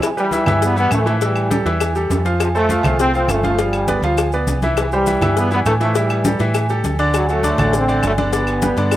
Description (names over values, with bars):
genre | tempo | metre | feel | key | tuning
latin, salsa | 202 BPM | 4/4 | straight | C major | A4 = 440 Hz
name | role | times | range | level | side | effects
bright trombone section | melody | 0.0-9.0 s | C3 to C4 | -20 LUFS | equal | none
agogo bells and timbales | percussion | 0.0-9.0 s | none | -27 LUFS | right 4 dB | none
claves | percussion | 0.0-9.0 s | none | -30 LUFS | left 3 dB | none
congas | percussion | 0.0-9.0 s | none | -25 LUFS | left 1 dB | none
cowbell | percussion | 0.0-9.0 s | none | -26 LUFS | left 8 dB | none
maracas | percussion | 0.0-9.0 s | none | -34 LUFS | left 5 dB | none
bright grand piano | accompaniment | 0.2-9.0 s | D3 to F5 | -20 LUFS | equal | none
hollow-body short-scale fingered electric bass | bass | 0.5-9.0 s | G1 to A2 | -20 LUFS | equal | none
room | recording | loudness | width
little or no reverb | rough home demo mix | -15 LUFS | side -13 dB against mid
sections
0.0-9.0 A section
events
none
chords
0.0 Cmaj7 (rootless); 1.2 A5; 2.4 Fadd9; 3.6 G7; 4.8 C; 6.0 A5; 7.1 D7; 8.3 G